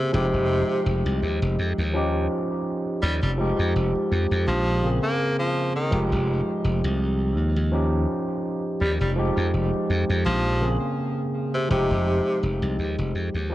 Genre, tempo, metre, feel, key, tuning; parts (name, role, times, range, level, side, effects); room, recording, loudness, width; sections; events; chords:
vaporwave; 83 BPM; 4/4; swing 55% on 16ths; F minor; A4 = 440 Hz
edgy tenor saxophone; melody; 0.0-12.4 s; C3 to Bb3; -28 LUFS; equal; tape echo
overdriven tine electric piano; accompaniment; 0.0-13.5 s; Db3 to Ab4; -25 LUFS; equal; lush chorus, tape echo
glassy slap bass; bass; 0.1-13.5 s; F1 to F2; -23 LUFS; equal; tube saturation
light reverb, small room ambience; cassette tape; -21 LUFS; side -15 dB against mid
0.0-13.5 A section
fade-out 11.6-13.5
0.1 Fm9; 1.9 Eb9; 3.4 Fm9; 4.8 Bbm9; 5.9 Fm9; 7.7 Eb9; 9.2 Fm9; 10.6 Bbm9; 11.7 Fm9